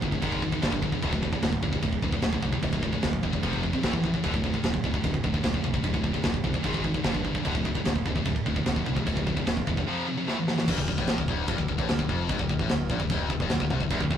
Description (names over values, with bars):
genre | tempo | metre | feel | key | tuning
heavy metal | 149 BPM | 4/4 | straight | D minor | A4 = 439 Hz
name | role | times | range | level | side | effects
heavy high-gain guitar | riff | 0.0-14.2 s | D2 to A3 | -31 LUFS | left 6 dB | distortion
heavy high-gain guitar | riff | 0.0-10.7, 13.9-14.2 s | D2 to A3 | -32 LUFS | right 6 dB | distortion
growling picked electric bass | bass | 0.0-14.2 s | D1 to C2 | -31 LUFS | equal | overdrive
tight metal drum kit | drums | 0.0-14.2 s | china cymbal, crash cymbal, kick drum, snare drum | -28 LUFS | right 1 dB | none
room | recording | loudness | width
light reverb | rough rehearsal-room recording, tube saturation, lossy compression artefacts | -24 LUFS | side -9 dB against mid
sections
0.0-10.7 A section; 10.7-14.2 B section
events
drum fill 10.3-10.7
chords
0.2 G#5; 0.6 G5; 1.0 D5; 3.4 F5; 3.8 A5; 4.2 D5; 6.7 G#5; 7.1 G5; 7.5 D5; 9.9 F5; 10.3 A5; 10.7 D5